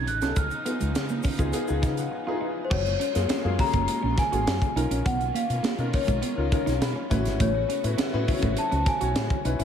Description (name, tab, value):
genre	polished 1980s jazz-funk pop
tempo	102 BPM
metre	4/4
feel	straight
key	F# major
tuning	A4 = 442 Hz
part	large celesta	melody	0.0-9.6 s	B#4 to F#6	-30 LUFS	left 3 dB	slapback echo
part	warm grand piano	accompaniment	0.0-9.6 s	A#3 to B5	-31 LUFS	left 3 dB	lush chorus, slapback echo
part	rich studio string section	sustained chords	0.0-9.6 s	C#3 to F#4	-37 LUFS	equal	none
part	electric guitar at the edge of break-up	riff	0.0-9.6 s	G#3 to F#4	-33 LUFS	right 6 dB	analog chorus, slapback echo
part	woody fretless electric bass	bass	0.0-9.6 s	F#1 to C#3	-28 LUFS	equal	none
part	tight funk drum kit	drums	0.1-9.6 s	crash cymbal, hi-hat, kick drum, snare drum	-28 LUFS	equal	none
part	tube shaker	percussion	0.2-2.1 s	none	-48 LUFS	left 9 dB	none
room	moderate lush hall reverb, RT60 1.6 s, studio reverb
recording	big arena sound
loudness	-23 LUFS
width	side -8 dB against mid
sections	0.0-2.7 A section; 2.7-9.6 B section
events	grand piano fill 1.5-2.7, 6.5-7.4; break 2.1-2.7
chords	0.4 C#9; 2.7 F#maj9; 4.8 Bmaj9#11; 7.1 A69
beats	| 0.37 0.95 1.54 2.13 | 2.71 3.30 3.89 4.47 | 5.06 5.64 6.23 6.81 | 7.40 7.98 8.57 9.15